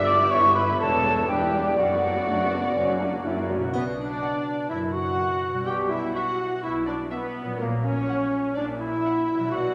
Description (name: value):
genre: cinematic, playful, whimsical film cue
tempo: 124 BPM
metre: 4/4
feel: straight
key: B minor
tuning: A4 = 440 Hz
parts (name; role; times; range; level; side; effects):
- muted studio violin section; melody; 0.0-9.1 s; F#4 to F#5; -37 LUFS; equal; none
- muted studio violin section; second line; 0.0-9.7 s; A#4 to G5; -36 LUFS; equal; none
- muted studio viola section; accompaniment; 0.0-9.7 s; F#3 to G4; -32 LUFS; equal; none
- concert harp; arpeggios; 0.0-9.7 s; E2 to B5; -33 LUFS; equal; none
- mellow tuba; bass; 0.0-3.7 s; E1 to G1; -36 LUFS; equal; none
- muted studio cello section; bass; 0.0-9.7 s; E2 to B2; -38 LUFS; equal; none
- muted studio double bass section; bass; 0.0-9.7 s; E1 to B1; -39 LUFS; equal; none
- hollow concert flute; second line; 0.1-3.2 s; F#5 to D6; -25 LUFS; equal; none
- mellow clarinet; second line; 0.1-9.7 s; A#3 to D5; -32 LUFS; equal; none
- mellow French horn section; sustained chords; 0.3-3.6 s; A3 to F#4; -35 LUFS; equal; none
- triangle; percussion; 3.7-4.7 s; none; -56 LUFS; equal; none
room: wet scoring stage reverb, RT60 2.1 s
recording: none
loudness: -25 LUFS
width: mono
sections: 0.0-3.7 A section; 3.7-9.7 B section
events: none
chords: 0.0 Em/G; 0.8 Em7; 1.8 Bm/F#; 2.8 F#; 3.7 Bm; 5.7 C#m7b5/B; 7.6 F#/A#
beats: 0.33 0.81 1.29 | 1.78 2.27 2.76 3.25 | 3.73 4.22 4.70 5.19 | 5.67 6.15 6.63 7.11 | 7.59 8.08 8.56 9.04 | 9.52